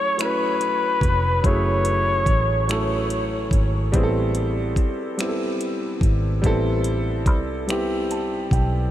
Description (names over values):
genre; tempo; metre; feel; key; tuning
slow six-eight R&B; 48 BPM (dotted quarters); 6/8; straight; unclear; A4 = 440 Hz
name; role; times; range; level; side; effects
breathy flugelhorn; melody; 0.0-3.1 s; Cb5 to Db5; -23 LUFS; left 2 dB; tape echo
clear grand piano; accompaniment; 0.0-8.9 s; Gb3 to A5; -25 LUFS; right 1 dB; none
smooth R&B drum kit; drums; 0.2-8.7 s; finger snaps, hi-hat, kick drum; -24 LUFS; equal; none
vintage muted fingered electric bass; bass; 1.0-8.9 s; F1 to C2; -23 LUFS; equal; none
room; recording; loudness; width
moderate huge ambient reverb, RT60 4.7 s; dreamy mix soaked in reverb; -19 LUFS; side -12 dB against mid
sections
0.0-8.9 A section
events
grand piano fill 7.7-8.9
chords
0.0 Gbm9; 3.9 Am9